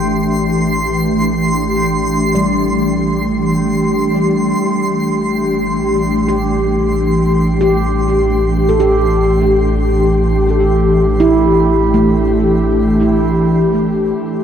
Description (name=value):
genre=ambient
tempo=free time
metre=none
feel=none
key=unclear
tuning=A4 = 438 Hz
part: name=ethereal airy pad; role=sustained chords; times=0.0-14.4 s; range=E3 to G4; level=-14 LUFS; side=left 1 dB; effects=ensemble chorus, built-in reverb, shimmer reverb
part: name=handpan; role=arpeggios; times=0.0-14.4 s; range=G3 to G5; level=-18 LUFS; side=right 3 dB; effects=diffuse ambient delay, shimmer reverb
part: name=warm sub bass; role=bass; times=0.0-14.4 s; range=A1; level=-20 LUFS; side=equal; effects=tube saturation
part: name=twinkling granular texture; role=texture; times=0.0-14.2 s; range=C6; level=-24 LUFS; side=right 2 dB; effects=built-in reverb, shimmer reverb
part: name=organ-like drone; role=drone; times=14.2-14.4 s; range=none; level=barely audible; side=none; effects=none
room=wet huge ambient reverb, RT60 7.2 s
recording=none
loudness=-12 LUFS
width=side -8 dB against mid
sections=0.0-14.2 A section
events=fade-in on handpan 0.0-14.2; fade-in on sub bass 0.0-14.2; fade-out on synth texture 0.0-14.2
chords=0.0 Cadd9/A